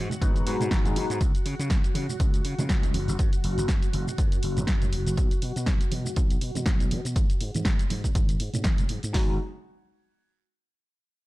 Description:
filtered disco house; 121 BPM; 4/4; swing 56% on 16ths; G# minor; A4 = 441 Hz
string machine, full ensemble; sustained chords; 0.0-9.2 s; F#4 to F#5; -37 LUFS; left 1 dB; ensemble chorus, vintage 12-bit sampler grit, sidechain pumping, low-pass filter
gritty slap bass; bass; 0.0-9.4 s; F#1 to C#3; -30 LUFS; equal; overdrive, sidechain pumping, low-pass filter
punchy analog drum machine; drums; 0.1-9.1 s; hi-hat, shaker, snare drum; -33 LUFS; equal; sidechain pumping on hats, sidechain pumping on cymbals, sidechain pumping on perc
congas and tambourine; percussion; 0.1-9.1 s; -34 LUFS; right 3 dB; sidechain pumping on perc, low-pass filter on perc
clear grand piano; accompaniment; 0.2-1.2, 9.1-9.3 s; F#3 to G#4; -30 LUFS; left 2 dB; phaser, sidechain pumping, low-pass filter
punchy analog drum machine; drums; 0.2-9.3 s; hi-hat, kick drum, snare drum; -24 LUFS; equal
digital ambience; dark, warm production; -23 LUFS; side -18 dB against mid
0.0-9.1 A section; 9.1-11.1 B section
filter sweep on slap bass 0.0-9.1; filter sweep 0.0-9.1
0.0 G#m7; 1.2 C#sus4; 2.9 N.C.; 5.2 B5; 7.2 F#sus2/G#; 9.1 G#m7

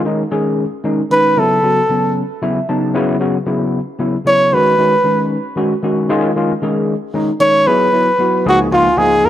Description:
jazz; 76 BPM (dotted quarters); 6/8; straight; A4 = 440 Hz
overdriven tine electric piano; accompaniment; 0.0-9.3 s; C#2 to A5; -16 LUFS; left 1 dB; lush chorus
trumpet with bucket mute; melody; 1.1-9.3 s; E#4 to C#5; -12 LUFS; right 1 dB
moderate plate reverb, RT60 2.5 s; -12 LUFS; side -12 dB against mid
0.0-9.2 A section
muted trumpet solo 0.0-9.2; tine electric piano fill 2.2-2.9, 8.5-9.2
0.0 C#5; 1.4 B9sus4; 2.9 F#5; 4.5 G#m7; 6.1 C#; 7.7 Bsus4; 8.5 C#

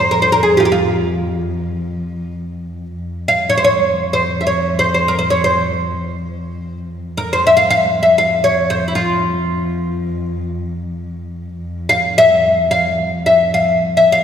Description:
Arabic maqam ensemble; free time; A4 = 439 Hz
oud; melody; 0.0-14.2 s; E4 to F5; -13 LUFS; equal
dark cello; drone; 0.0-14.2 s; F2; -22 LUFS; equal
wet concert hall reverb, RT60 2.1 s; recorded in a church or concert hall; -13 LUFS; side -8 dB against mid
0.0-3.0 A section; 3.0-11.6 A section; 11.6-14.2 A section

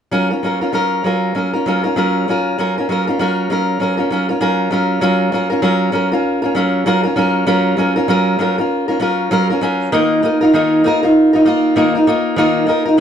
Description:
pop; 98 BPM; 4/4; swing 60% on 16ths; F# major; A4 = 443 Hz
fingerpicked steel-string acoustic guitar; accompaniment; 0.1-13.0 s; D#3 to A#4; -13 LUFS; equal
moderate studio ambience, RT60 0.5 s; dark, warm production; -13 LUFS; side -8 dB against mid
0.1-5.0 A section; 5.0-13.0 B section
0.1 F#maj7; 9.9 D#sus2

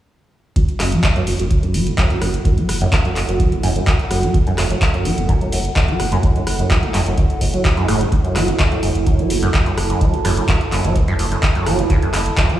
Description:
acid house; 127 BPM; 4/4; straight; F# minor; A4 = 440 Hz
liquid acid bass; riff; 0.6-12.6 s; F#2 to F#3; -20 LUFS; right 1 dB; tube saturation, wide subtle chorus, sidechain pumping, dub echo
booming analog drum machine; drums; 0.6-12.6 s; handclaps, hi-hat, rim click; -23 LUFS; equal
electronic kick drum; drums; 0.6-12.5 s; -17 LUFS; equal
warbly tape-like pad; texture; 0.7-12.6 s; E4 to A5; -24 LUFS; right 3 dB; chorus, built-in reverb, phaser, sidechain pumping
round analog bass; bass; 0.8-12.3 s; F#1; -22 LUFS; right 1 dB; sidechain pumping
light reverb, digital ambience; played on a big sound system in a bare room, stone room reverb; -15 LUFS; side -12 dB against mid
0.6-12.6 A section
filter sweep on acid bass 0.6-12.6
0.6 F#m7

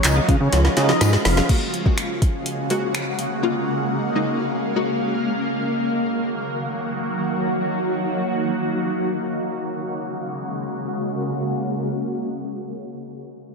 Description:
dance-pop; 124 BPM; 4/4; straight; F# major; A4 = 440 Hz
filtered supersaw swell; melody; 0.0-1.4 s; C#4 to E#5; -26 LUFS; equal; lush chorus, sidechain pumping, diffuse ambient delay
punchy chord stab; accompaniment; 0.0-5.2 s; E#3 to G#4; -26 LUFS; left 2 dB; chorus, sidechain pumping, low-pass filter
shimmering ambient pad; sustained chords; 0.0-13.0 s; C#3 to E#5; -23 LUFS; equal; chorus, built-in reverb, phaser, sidechain pumping, low-pass filter
direct-recorded clean electric guitar; riff; 0.0-1.5 s; G#3 to E#4; -32 LUFS; right 4 dB; ensemble chorus
chorused synth bass; bass; 0.0-1.4 s; E#1 to C#3; -18 LUFS; equal; sidechain pumping
smooth R&B drum kit; drums; 0.0-3.3 s; crash cymbal, finger snaps, handclaps, hi-hat, kick drum, snare drum; -20 LUFS; equal
tambourine; percussion; 0.0-1.1 s; -33 LUFS; left 10 dB
wet lush hall reverb, RT60 1.5 s; dreamy mix soaked in reverb; -20 LUFS; side -4 dB against mid
0.0-1.5 A section; 1.5-9.2 B section; 9.2-13.1 C section
drop 0.0-1.5; drum fill 0.5-1.5; filter sweep 1.5-9.2
0.0 C#; 1.5 F#add9; 5.4 D#m; 9.2 F#add9

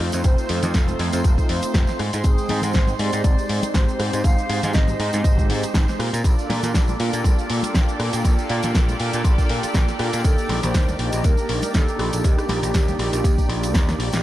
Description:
nu-disco, nu disco; 120 BPM; 4/4; swing 55% on 16ths; A4 = 439 Hz
breathy mellow concert flute; melody; 0.0-5.7, 10.2-14.0 s; G4 to F5; -29 LUFS; equal; tape echo
warm analog pad; accompaniment; 0.0-14.2 s; Ab3 to G5; -27 LUFS; right 1 dB; chorus, sidechain pumping
warm studio string section; sustained chords; 0.0-14.2 s; G4 to C6; -34 LUFS; equal; sidechain pumping
overdriven picked electric bass; bass; 0.0-14.2 s; F1 to Bb2; -24 LUFS; equal; sidechain pumping
house drum kit; drums; 0.1-14.2 s; hi-hat, rim click, shaker, snare drum; -27 LUFS; equal; studio reverb
tambourine and congas; percussion; 0.1-14.2 s; -33 LUFS; left 2 dB
electronic kick drum; drums; 0.2-13.9 s; -18 LUFS; equal; studio reverb
little or no reverb; dark, warm production; -18 LUFS; side -14 dB against mid
0.0-14.2 A section
drop 0.0-14.2; drum fill 13.9-14.2
0.0 F7; 2.0 Abmaj7; 6.0 Bbmaj7; 10.2 Ebmaj7

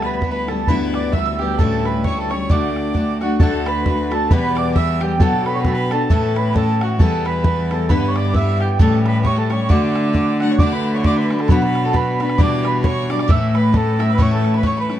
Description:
celtic folk, Celtic polka; 133 BPM; 2/4; swing 58% on 8ths; D major; A4 = 441 Hz
mellow accordion; melody; 0.0-15.0 s; F#4 to F#5; -23 LUFS; right 4 dB
bright fiddle; second line; 0.0-15.0 s; F#4 to F#5; -31 LUFS; left 10 dB
hammered dulcimer; second line; 0.0-15.0 s; F#5 to E6; -31 LUFS; right 4 dB
picked steel-string acoustic guitar; accompaniment; 0.0-15.0 s; E2 to G4; -20 LUFS; left 2 dB
rich cello; drone; 0.0-3.5 s; D2; -28 LUFS; left 1 dB
bodhran; percussion; 0.0-15.0 s; -17 LUFS; equal
rich cello; bass; 3.4-15.0 s; D2 to D3; -20 LUFS; equal
moderate small room reverb, RT60 0.5 s; dark, warm production; -15 LUFS; side -11 dB against mid
0.0-3.4 A section; 3.4-10.6 A section; 10.6-15.0 B section
0.0 G6; 1.6 A7; 2.5 D; 4.3 Em; 5.2 Bm; 6.1 A; 7.0 Em; 7.9 G6; 8.8 A7; 9.7 D; 11.5 Bm; 12.4 Em7/B; 13.3 A

